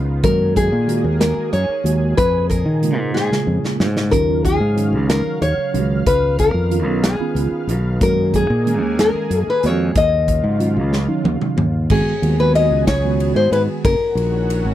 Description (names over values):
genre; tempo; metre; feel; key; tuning
electric jazz fusion; 62 BPM (dotted quarters); 6/8; straight; Eb minor; A4 = 441 Hz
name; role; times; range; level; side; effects
analog string pad; sustained chords; 0.0-14.7 s; Bb2 to F5; -29 LUFS; equal; ensemble chorus
fingered electric bass; bass; 0.0-14.7 s; F#1 to Eb3; -19 LUFS; equal; none
nylon-string guitar; melody; 0.2-14.7 s; Ab4 to Eb5; -19 LUFS; left 3 dB; none
mellow tine electric piano; accompaniment; 0.2-13.8 s; Db3 to Gb4; -22 LUFS; right 5 dB; medium stereo tremolo, phaser
modern studio drum kit; drums; 0.2-14.6 s; crash cymbal, hi-hat, kick drum, ride cymbal, snare drum, toms; -22 LUFS; equal; none
room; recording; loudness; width
little or no reverb; none; -15 LUFS; side -12 dB against mid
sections
0.0-11.9 A section; 11.9-14.7 B section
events
drum fill 3.2-4.1, 10.9-11.9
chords
0.2 Gb69; 2.2 Bbm7/F; 4.1 Ebm9; 6.1 Db9; 8.0 Gb69; 10.0 Ebm9; 11.9 G#m7; 13.8 D#m7/F#